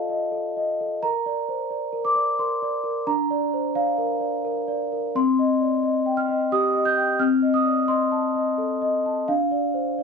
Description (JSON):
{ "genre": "classical, lullaby for celesta", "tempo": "87 BPM", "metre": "3/4", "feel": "straight", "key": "Bb major", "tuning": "A4 = 440 Hz", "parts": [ { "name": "large celesta", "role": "solo", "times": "0.0-10.0 s", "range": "C4 to G6", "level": "-21 LUFS", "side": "left 1 dB", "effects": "none" } ], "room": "light reverb", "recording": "none", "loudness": "-21 LUFS", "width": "side -5 dB against mid", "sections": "0.0-10.0 A section", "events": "none", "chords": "0.0 F7; 1.0 Bb; 3.1 Bb/D; 5.1 Cm; 7.2 Adim/C; 9.3 Bb/D (rootless)" }